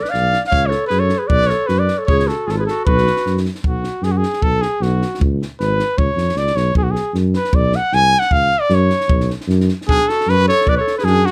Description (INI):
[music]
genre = balkan folk, Balkan brass band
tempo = 154 BPM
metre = 2/4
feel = swing 55% on 16ths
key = B dorian sharp4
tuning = A4 = 440 Hz
[part]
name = mellow trumpet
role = melody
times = 0.0-11.3 s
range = F#4 to G#5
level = -20 LUFS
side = equal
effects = none
[part]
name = warm clarinet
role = second line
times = 0.0-3.4, 9.9-11.3 s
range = D4 to D5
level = -25 LUFS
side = equal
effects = none
[part]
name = compact cocktail drum kit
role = percussion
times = 0.0-11.3 s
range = kick drum, snare drum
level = -24 LUFS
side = equal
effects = none
[part]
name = mellow tuba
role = bass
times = 0.1-11.3 s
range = G#1 to F#2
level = -20 LUFS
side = equal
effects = none
[sound]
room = light reverb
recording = close, detailed microphones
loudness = -17 LUFS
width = mono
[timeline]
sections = 0.0-3.6 A section; 3.6-9.9 B section; 9.9-11.3 C section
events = trumpet solo 3.6-9.9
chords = 0.0 Bdim; 0.5 C#7(no3); 1.3 B5; 2.1 C#5; 2.9 B5; 5.2 C#; 6.8 B5; 8.3 C#add11; 9.1 B5